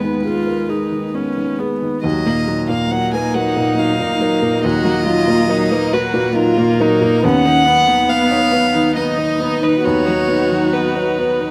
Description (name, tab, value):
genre	neoclassical piano and strings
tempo	69 BPM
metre	3/4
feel	rubato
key	Eb minor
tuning	A4 = 440 Hz
part	rich violin	melody	0.0-11.5 s	Bb4 to Ab5	-22 LUFS	equal	slapback echo
part	dark cello	second line	0.0-11.5 s	Ab3 to Gb4	-22 LUFS	equal	slapback echo
part	felt-muted upright piano	accompaniment	0.0-11.5 s	Eb2 to Db5	-21 LUFS	equal	none
part	warm viola	accompaniment	0.0-11.5 s	Gb3 to F4	-24 LUFS	equal	none
part	warm chamber string section	sustained chords	2.0-11.5 s	Gb3 to Bb5	-31 LUFS	equal	none
room	light reverb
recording	recorded outdoors, with no room sound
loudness	-16 LUFS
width	mono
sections	0.0-2.0 A section; 2.0-11.5 A section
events	none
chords	0.0 Abm/Eb; 2.0 Ebm; 7.2 B/D#